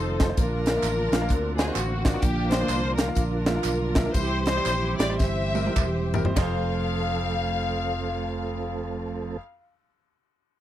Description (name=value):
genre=uptempo gospel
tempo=97-130 BPM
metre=4/4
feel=swing 62% on 8ths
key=F major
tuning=A4 = 441 Hz
part: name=warm studio string section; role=melody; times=0.0-9.4 s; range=A#3 to F5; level=-28 LUFS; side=left 2 dB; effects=none
part: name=tonewheel organ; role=sustained chords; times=0.0-9.4 s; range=D3 to A4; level=-32 LUFS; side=right 4 dB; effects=slow rotary speaker, chorus vibrato
part: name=fingered electric bass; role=bass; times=0.0-9.4 s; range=E1 to D2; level=-29 LUFS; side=equal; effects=none
part: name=clear upright piano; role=accompaniment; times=0.2-9.4 s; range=F2 to F5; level=-32 LUFS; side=equal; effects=none
part: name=crisp fusion drum kit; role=drums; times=0.2-6.5 s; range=hi-hat, kick drum, ride cymbal, snare drum, toms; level=-24 LUFS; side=equal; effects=none
part: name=tambourine and handclaps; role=percussion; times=0.2-6.7 s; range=none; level=-37 LUFS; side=right 4 dB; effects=none
room=light reverb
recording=dry, close 1970s-style studio recording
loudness=-23 LUFS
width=side -12 dB against mid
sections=0.0-6.4 A section; 6.4-10.6 B section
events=slowing down 2.2-6.4; drum fill 5.2-6.4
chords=0.4 Bb; 1.3 D7alt; 2.2 Bb; 4.1 C; 6.4 F